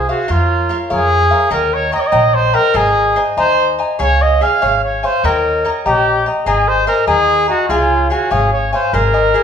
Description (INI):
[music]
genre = mexican folk, mariachi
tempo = 97 BPM (dotted quarters)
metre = 6/8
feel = straight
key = Db major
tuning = A4 = 436 Hz
[part]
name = warm trumpet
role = melody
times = 0.0-9.4 s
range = F4 to F5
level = -14 LUFS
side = equal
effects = none
[part]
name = cavaquinho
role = accompaniment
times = 0.0-9.4 s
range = F4 to Bb5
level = -17 LUFS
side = left 2 dB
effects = none
[part]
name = upright bass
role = bass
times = 0.0-9.3 s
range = Ab1 to F2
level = -20 LUFS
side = equal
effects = none
[sound]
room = wet large studio reverb, RT60 0.8 s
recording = band playing live in one room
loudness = -12 LUFS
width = side -7 dB against mid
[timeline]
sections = 0.0-8.9 A section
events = none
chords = 0.3 Bbm/F; 1.5 Eb7; 2.8 Abadd9; 4.0 Db; 5.2 Eb7; 6.5 Abadd9; 7.7 Db; 8.9 Ab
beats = | 0.29 0.91 | 1.52 2.13 | 2.75 3.37 | 4.00 4.62 | 5.24 5.86 | 6.46 7.07 | 7.69 8.31 | 8.93